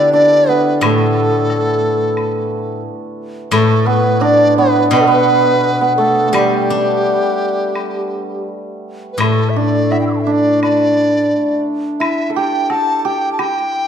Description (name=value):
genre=chinese traditional, Chinese chamber ensemble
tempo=86 BPM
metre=4/4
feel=rubato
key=D zhi mode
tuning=A4 = 440 Hz
part: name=reedy large dizi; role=melody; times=0.0-13.9 s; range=G4 to E6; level=-16 LUFS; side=left 1 dB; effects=none
part: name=hammered dulcimer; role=second line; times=0.0-13.9 s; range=G3 to A4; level=-16 LUFS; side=right 3 dB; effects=none
part: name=steel-string zither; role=accompaniment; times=0.0-11.3 s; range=A2 to D4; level=-19 LUFS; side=left 3 dB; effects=none
part: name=woodblock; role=percussion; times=0.8-13.5 s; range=none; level=-25 LUFS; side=left 2 dB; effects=none
room=wet recital hall reverb, RT60 1.6 s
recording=dark, warm production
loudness=-12 LUFS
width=side -8 dB against mid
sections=0.0-13.9 A section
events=none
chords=none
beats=0.14 | 0.83 1.50 2.17 2.85 | 3.53 4.22 4.92 5.62 | 6.33 7.04 7.75 8.47 | 9.20 9.92 10.62 11.31 | 12.00 12.69 13.38